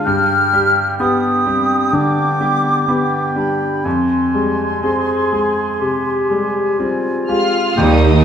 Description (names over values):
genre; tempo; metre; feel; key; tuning
cinematic, emotional film score for orchestra; 60-64 BPM; 4/4; rubato; unclear; A4 = 442 Hz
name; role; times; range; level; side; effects
small flute group; second line; 0.0-8.2 s; Eb5 to F6; -19 LUFS; equal; none
warm clarinet; second line; 0.0-7.9 s; Bb3 to Ab4; -22 LUFS; equal; none
warm oboe; second line; 0.0-7.9 s; G5 to Ab5; -24 LUFS; right 3 dB; none
bright grand piano; accompaniment; 0.0-8.2 s; Eb2 to Ab4; -18 LUFS; left 2 dB; none
warm studio violin section; melody; 7.3-8.2 s; Eb6 to F6; -22 LUFS; right 1 dB; none
warm studio viola section; accompaniment; 7.3-8.2 s; Eb4 to F4; -20 LUFS; equal; none
warm studio violin section; second line; 7.8-8.2 s; G3 to G4; -20 LUFS; right 2 dB; none
dark French horn section; sustained chords; 7.8-8.2 s; Bb3 to G4; -18 LUFS; left 3 dB; none
rich studio double bass section; bass; 7.8-8.2 s; Eb2; -14 LUFS; right 5 dB; none
warm studio cello section; bass; 7.8-8.2 s; Eb2; -14 LUFS; right 2 dB; none
room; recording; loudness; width
moderate scoring stage reverb, RT60 1.9 s; none; -14 LUFS; side -8 dB against mid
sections
0.0-7.8 A section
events
none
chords
0.1 G; 3.9 Fmadd9